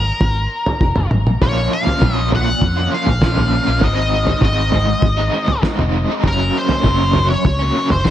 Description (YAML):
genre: psychedelic rock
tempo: 99 BPM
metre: 4/4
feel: straight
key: Bb minor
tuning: A4 = 439 Hz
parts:
  - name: octave-fuzz lead guitar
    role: melody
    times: 0.0-8.1 s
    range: Bb4 to Gb5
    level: -21 LUFS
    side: left 1 dB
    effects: wah, distortion, tape echo
  - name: fingered electric bass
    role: bass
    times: 0.0-8.1 s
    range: F1 to F2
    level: -19 LUFS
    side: equal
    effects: none
  - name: cloth-damped thuddy drum kit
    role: drums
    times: 0.2-8.1 s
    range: kick drum, snare drum, toms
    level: -18 LUFS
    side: equal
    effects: none
  - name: overdriven electric guitar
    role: riff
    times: 1.4-8.1 s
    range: Gb2 to F4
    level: -19 LUFS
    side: equal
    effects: tremolo, tape echo
room: light reverb, studio reverb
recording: echo-heavy mix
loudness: -14 LUFS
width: side -11 dB against mid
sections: 0.0-8.1 A section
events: none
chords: 0.0 Fmadd11 (rootless); 1.4 Bbm; 3.8 Ab; 6.2 Gb